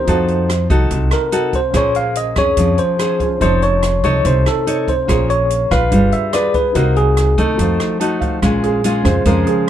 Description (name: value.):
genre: bossa nova.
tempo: 144 BPM.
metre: 4/4.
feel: straight.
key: Bb minor.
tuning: A4 = 442 Hz.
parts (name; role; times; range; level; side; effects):
tine electric piano; melody; 0.0-8.0 s; Ab4 to F5; -17 LUFS; equal; auto-pan.
nylon-string guitar; accompaniment; 0.0-9.7 s; Bb2 to Db5; -18 LUFS; left 2 dB; none.
warm baby grand piano; accompaniment; 0.0-9.7 s; Db3 to C6; -24 LUFS; right 5 dB; none.
upright bass; bass; 0.1-9.4 s; F1 to F2; -18 LUFS; equal; none.
open jazz drum kit; drums; 0.1-9.6 s; hi-hat, kick drum, rim click; -22 LUFS; equal; none.
room: light reverb.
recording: dark, warm production.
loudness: -13 LUFS.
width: side -10 dB against mid.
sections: 0.0-8.4 A section; 8.4-9.7 B section.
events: grand piano fill 7.8-8.4; grand piano solo 8.4-9.7.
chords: 0.1 F7b9; 1.7 Bbm9; 3.4 F7b13; 5.1 Bbm7; 5.9 G7b9; 6.7 Cm7b5; 7.6 F7b9; 8.4 Bbm7.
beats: | 0.07 0.49 0.90 1.32 | 1.74 2.15 2.57 2.99 | 3.41 3.82 4.24 4.66 | 5.08 5.50 5.91 6.33 | 6.75 7.17 7.58 8.00 | 8.42 8.83 9.25 9.67.